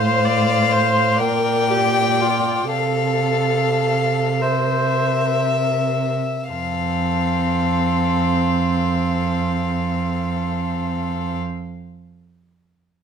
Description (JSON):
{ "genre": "classical, slow romantic movement for string quartet", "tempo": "26-43 BPM (dotted quarters)", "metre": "6/8", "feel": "rubato", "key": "F major", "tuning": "A4 = 439 Hz", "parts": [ { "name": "warm violin", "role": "melody", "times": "0.0-11.4 s", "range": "A4 to D5", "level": "-27 LUFS", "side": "left 9 dB", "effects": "none" }, { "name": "warm violin", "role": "second line", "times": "0.0-11.4 s", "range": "E5 to G5", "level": "-23 LUFS", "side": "left 5 dB", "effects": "none" }, { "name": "rich viola", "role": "accompaniment", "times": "0.0-11.4 s", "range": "C4 to D5", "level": "-23 LUFS", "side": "right 2 dB", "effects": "none" }, { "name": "dark cello", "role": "bass", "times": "0.0-11.4 s", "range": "F2 to C3", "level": "-22 LUFS", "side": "right 4 dB", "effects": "none" } ], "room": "moderate stone room reverb, RT60 1.1 s", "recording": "none", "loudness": "-17 LUFS", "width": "side -7 dB against mid", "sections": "0.0-6.5 A section; 6.5-10.6 B section", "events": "slowing down 0.0-6.5", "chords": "0.0 F/A; 1.2 Bb6; 2.7 F/C; 4.4 C7; 6.5 F", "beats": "1.20 | 2.72 4.41 | 6.52 8.60" }